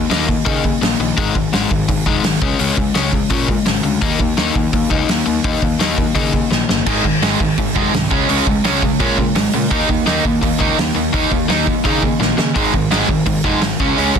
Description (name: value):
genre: punk rock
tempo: 169 BPM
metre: 4/4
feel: straight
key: unclear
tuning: A4 = 439 Hz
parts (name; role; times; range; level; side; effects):
- overdriven electric guitar; riff; 0.0-14.2 s; Ab2 to Eb4; -18 LUFS; left 8 dB; none
- fuzz picked electric bass; bass; 0.0-14.2 s; F1 to Db3; -23 LUFS; right 1 dB; overdrive
- loose indie drum kit; drums; 0.1-14.2 s; crash cymbal, hi-hat, kick drum, snare drum; -19 LUFS; right 1 dB; none
- distorted electric guitar; riff; 6.9-14.2 s; Ab2 to Eb4; -18 LUFS; right 18 dB; overdrive
room: little or no reverb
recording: dense, heavily limited modern master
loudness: -14 LUFS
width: side -7 dB against mid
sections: 0.0-14.2 A section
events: drum fill 6.5-6.9, 12.2-12.6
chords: 0.0 Eb5; 1.2 Ab5; 2.4 Db5; 4.0 Eb5; 6.9 Ab5; 8.1 Db5; 9.7 Eb5; 12.6 Ab5